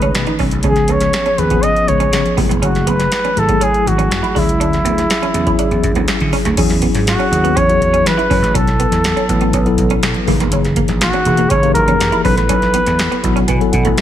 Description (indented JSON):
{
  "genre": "polished 1980s jazz-funk pop",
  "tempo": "122 BPM",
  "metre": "4/4",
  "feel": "straight",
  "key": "E major",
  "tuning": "A4 = 440 Hz",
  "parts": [
    { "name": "breathy flugelhorn", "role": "melody", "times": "0.0-13.3 s", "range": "E4 to D#5", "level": "-17 LUFS", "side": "equal", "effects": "none" },
    { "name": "mellow tine electric piano", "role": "accompaniment", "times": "0.0-14.0 s", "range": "D#3 to B5", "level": "-18 LUFS", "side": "left 3 dB", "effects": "medium stereo tremolo, analog chorus" },
    { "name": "semi-hollow electric guitar", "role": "riff", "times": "0.0-14.0 s", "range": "A3 to E4", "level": "-23 LUFS", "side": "right 7 dB", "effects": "wide subtle chorus" },
    { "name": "vintage slap bass", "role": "bass", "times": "0.0-14.0 s", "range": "E1 to E3", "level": "-18 LUFS", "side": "equal", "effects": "none" },
    { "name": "booming analog drum machine", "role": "drums", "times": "0.0-14.0 s", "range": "crash cymbal, hi-hat, kick drum, snare drum", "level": "-18 LUFS", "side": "equal", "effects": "gated reverb" },
    { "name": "congas", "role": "percussion", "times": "0.0-14.0 s", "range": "none", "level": "-31 LUFS", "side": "right 1 dB", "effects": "none" }
  ],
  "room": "little or no reverb",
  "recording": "none",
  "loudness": "-12 LUFS",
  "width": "side -11 dB against mid",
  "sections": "0.0-6.6 A section; 6.6-14.0 B section",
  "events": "tine electric piano fill 13.0-14.0",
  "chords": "0.0 B13; 0.6 C#7; 2.4 F#m9; 4.3 Dmaj9#11; 6.6 E69; 8.5 B7sus4; 10.3 F#13; 12.2 B7sus4"
}